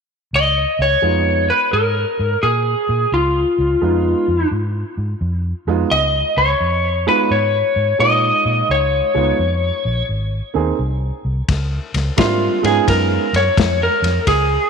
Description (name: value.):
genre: electric blues shuffle.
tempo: 86 BPM.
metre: 4/4.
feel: swing 66% on 8ths.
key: Db mixolydian.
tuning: A4 = 441 Hz.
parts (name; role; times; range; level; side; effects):
vintage muted fingered electric bass; bass; 0.3-14.6 s; Ab1 to Bb2; -20 LUFS; equal; none.
electric slide guitar; melody; 0.4-14.7 s; F4 to Eb5; -16 LUFS; left 1 dB; none.
warm upright piano; accompaniment; 1.0-13.2 s; G3 to Fb5; -22 LUFS; right 9 dB; none.
warm soul drum kit; drums; 11.5-14.5 s; kick drum, ride cymbal, snare drum; -21 LUFS; left 4 dB; none.
room: moderate echo chamber reverb, RT60 2.1 s.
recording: 1960s-style stereo.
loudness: -15 LUFS.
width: side -6 dB against mid.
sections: 0.3-11.5 A section; 11.5-14.7 B section.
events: electric slide guitar solo 11.5-14.7.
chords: 0.3 Db7; 10.1 Ab; 11.5 Db9.